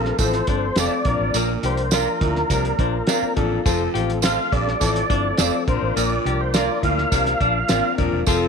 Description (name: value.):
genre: uptempo 1960s-style soul.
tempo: 104 BPM.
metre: 4/4.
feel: straight.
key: unclear.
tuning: A4 = 435 Hz.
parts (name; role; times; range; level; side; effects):
tonewheel organ; melody; 0.0-8.0 s; Bb4 to F5; -24 LUFS; equal; overdrive, chorus vibrato, slow rotary speaker, tape echo.
warm baby grand piano; accompaniment; 0.0-8.5 s; F3 to C5; -26 LUFS; left 12 dB; none.
tonewheel organ; sustained chords; 0.0-8.5 s; F3 to Bb4; -32 LUFS; right 1 dB; chorus vibrato, slow rotary speaker.
growling baritone saxophone; riff; 0.0-8.5 s; F2 to C3; -30 LUFS; right 13 dB; none.
semi-hollow electric guitar; riff; 0.0-8.4 s; Bb3 to G4; -29 LUFS; left 14 dB; none.
vintage muted fingered electric bass; bass; 0.0-8.5 s; Eb1 to D2; -25 LUFS; right 1 dB; none.
cloth-damped thuddy drum kit; drums; 0.0-8.4 s; hi-hat, kick drum, snare drum; -24 LUFS; right 1 dB; none.
tambourine; percussion; 0.2-8.4 s; none; -29 LUFS; right 16 dB; none.
electric guitar through a small old amp; stabs; 0.8-7.8 s; A4 to F5; -30 LUFS; right 13 dB; tape echo.
room: light reverb, studio reverb.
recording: 1960s-style stereo with parts hard left and right.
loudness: -18 LUFS.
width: side -6 dB against mid.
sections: 0.0-8.5 A section.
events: none.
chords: 0.0 F; 1.1 Bb; 3.7 F; 5.7 Bb.